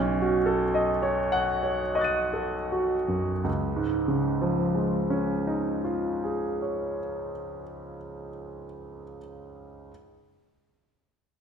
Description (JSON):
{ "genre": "classical, impressionist solo piano", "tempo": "37-60 BPM", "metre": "3/4", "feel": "rubato", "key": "Db major", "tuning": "A4 = 440 Hz", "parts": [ { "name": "warm concert grand piano", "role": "solo", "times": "0.0-9.9 s", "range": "Cb2 to Eb7", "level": "-26 LUFS", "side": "right 1 dB", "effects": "none" } ], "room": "wet recital hall reverb, RT60 1.5 s", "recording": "none", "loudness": "-24 LUFS", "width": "side -7 dB against mid", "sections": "0.0-3.5 A section; 3.5-7.7 B section", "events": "slowing down 0.0-3.5", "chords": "0.0 Cb9; 3.5 Dbadd9" }